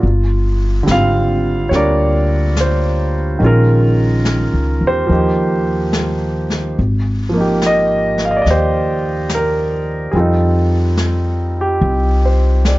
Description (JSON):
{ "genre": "jazz ballad", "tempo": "71 BPM", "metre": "4/4", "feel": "swing 68% on 8ths", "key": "unclear", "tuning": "A4 = 437 Hz", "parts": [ { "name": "clear concert grand piano", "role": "accompaniment", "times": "0.0-12.8 s", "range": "D3 to F5", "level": "-16 LUFS", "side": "right 1 dB", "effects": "none" }, { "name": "upright bass", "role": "bass", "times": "0.0-12.8 s", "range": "G1 to F2", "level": "-16 LUFS", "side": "equal", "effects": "none" }, { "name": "jazz brush drum kit", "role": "drums", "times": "0.0-12.8 s", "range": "brushed snare drum, hi-hat, snare drum", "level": "-25 LUFS", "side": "left 2 dB", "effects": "none" } ], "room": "light reverb", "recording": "nothing above 7.7 kHz", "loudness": "-13 LUFS", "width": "side -18 dB against mid", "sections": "0.0-12.8 A section", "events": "none", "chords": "0.0 Gm7; 3.4 Bbm7; 5.1 Ebadd9; 6.8 Abmaj9; 10.1 F9" }